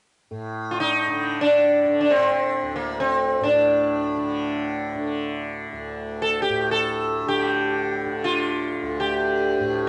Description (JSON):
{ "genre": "indian classical", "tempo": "free time", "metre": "none", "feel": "none", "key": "D raga bhairavi", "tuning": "A4 = 440 Hz", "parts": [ { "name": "tanpura", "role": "drone", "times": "0.3-9.9 s", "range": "D2 to D3", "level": "-30 LUFS", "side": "equal", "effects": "cassette tape" }, { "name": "sitar", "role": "melody", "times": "0.7-9.9 s", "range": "Bb3 to A4", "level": "-23 LUFS", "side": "equal", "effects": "none" } ], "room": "light reverb", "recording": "home recording on cassette, nothing above 10.8 kHz", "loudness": "-23 LUFS", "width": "mono", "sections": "0.3-9.9 A section", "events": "none", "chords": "none" }